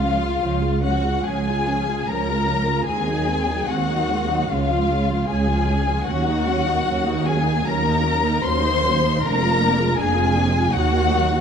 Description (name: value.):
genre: classical, slow romantic movement for string orchestra.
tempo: 70-81 BPM.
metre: 4/4.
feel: rubato.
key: Db major.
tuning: A4 = 440 Hz.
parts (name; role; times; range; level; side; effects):
warm studio violin section; melody; 0.0-11.4 s; F5 to C6; -24 LUFS; left 5 dB; none.
warm studio violin section; second line; 0.0-11.4 s; F4 to C5; -26 LUFS; left 3 dB; none.
warm studio viola section; accompaniment; 0.0-11.4 s; F3 to Gb4; -25 LUFS; right 2 dB; none.
dark studio cello section; bass; 0.0-11.4 s; Db2 to F2; -26 LUFS; right 2 dB; none.
rich studio double bass section; bass; 0.0-11.4 s; F1 to Eb2; -24 LUFS; right 3 dB; none.
room: moderate scoring stage reverb, RT60 1.8 s.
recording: dark, warm production.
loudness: -18 LUFS.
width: side -7 dB against mid.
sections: 0.0-11.4 A section.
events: none.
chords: 0.0 Db; 2.9 Ab7/Eb; 4.5 Db; 6.1 Ebm7; 9.2 Bb7/F; 10.7 Ebm.